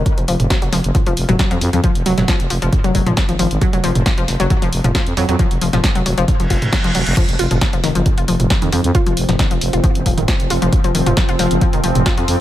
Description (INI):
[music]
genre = driving peak-time techno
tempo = 135 BPM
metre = 4/4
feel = straight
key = unclear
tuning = A4 = 440 Hz
[part]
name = analog pluck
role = riff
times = 0.0-12.2 s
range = Eb3 to F4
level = -20 LUFS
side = left 2 dB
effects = chorus, tube saturation, vintage 12-bit sampler grit, sidechain pumping, tape echo
[part]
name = growling FM bass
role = bass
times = 0.0-12.4 s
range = Eb1 to F2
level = -18 LUFS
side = equal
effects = sidechain pumping
[part]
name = electronic kick drum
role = drums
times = 0.1-12.2 s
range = none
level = -17 LUFS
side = equal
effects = none
[part]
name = punchy analog drum machine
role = drums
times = 0.1-12.4 s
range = crash cymbal, hi-hat, snare drum, toms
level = -21 LUFS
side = equal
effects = sidechain pumping on hats, sidechain pumping on toms, sidechain pumping on cymbals
[part]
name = reverse cymbal and impact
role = sound effects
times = 6.4-8.9 s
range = none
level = -26 LUFS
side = right 1 dB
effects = none
[part]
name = deep dark ambient pad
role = drone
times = 8.2-12.4 s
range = F3 to C4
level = -23 LUFS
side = equal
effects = chorus, built-in reverb, sidechain pumping
[sound]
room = little or no reverb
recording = none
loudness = -13 LUFS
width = side -13 dB against mid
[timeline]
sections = 0.0-7.2 A section; 7.2-12.4 B section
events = reverse cymbal 6.4-7.2; band accent 6.7; drop 7.2-12.4; impact 7.2-8.9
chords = 0.0 N.C.; 7.2 F5